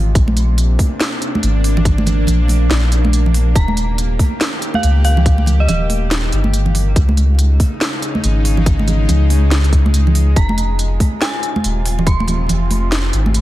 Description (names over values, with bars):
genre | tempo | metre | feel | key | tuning
deep dubstep | 141 BPM | 4/4 | swing 60% on 16ths, half-time | F minor | A4 = 441 Hz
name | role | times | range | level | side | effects
bowed-like drone | sustained chords | 0.0-13.4 s | C3 to G4 | -24 LUFS | equal | built-in reverb
soft dub sub bass | bass | 0.0-13.4 s | Eb1 to Db2 | -14 LUFS | equal | tube saturation
electronic kick drum | drums | 0.2-12.2 s | none | -16 LUFS | equal | none
garage drum kit | drums | 0.2-13.4 s | hi-hat, snare drum | -21 LUFS | equal | none
congas | percussion | 0.3-13.3 s | none | -22 LUFS | right 2 dB | none
dark detuned synth bell | melody | 3.6-5.8, 10.4-12.4 s | Eb5 to C6 | -25 LUFS | right 1 dB | chorus, tremolo, dub echo
room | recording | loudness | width
digital ambience | dense, heavily limited modern master, vinyl crackle | -12 LUFS | side -15 dB against mid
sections
0.0-13.4 A section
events
none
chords
0.2 Bbadd9; 3.6 Eb; 7.0 Dbsus2; 10.4 Fm